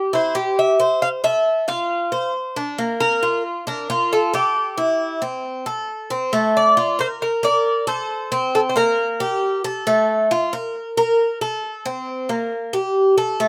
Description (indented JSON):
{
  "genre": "latin",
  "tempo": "136 BPM",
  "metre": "4/4",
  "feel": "straight",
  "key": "F major",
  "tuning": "A4 = 435 Hz",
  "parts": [
    { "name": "Cuban tres", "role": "arpeggios", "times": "0.0-13.5 s", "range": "A3 to C5", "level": "-22 LUFS", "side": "equal", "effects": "slapback echo" },
    { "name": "Cuban tres", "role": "melody", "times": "0.1-9.6 s", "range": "G4 to F5", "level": "-22 LUFS", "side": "equal", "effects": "none" }
  ],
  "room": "little or no reverb",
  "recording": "recorded outdoors, with no room sound",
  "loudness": "-20 LUFS",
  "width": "mono",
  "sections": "0.0-6.3 A section; 6.3-13.5 B section",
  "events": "none",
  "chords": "0.0 C; 1.0 F; 2.8 Bb; 4.6 C6; 6.3 F; 7.2 Bbmaj9; 8.1 Bbsus2; 9.0 Gmadd9/Bb; 9.9 F; 10.7 N.C.; 11.6 Bbsus2; 12.5 Gmadd9/Bb"
}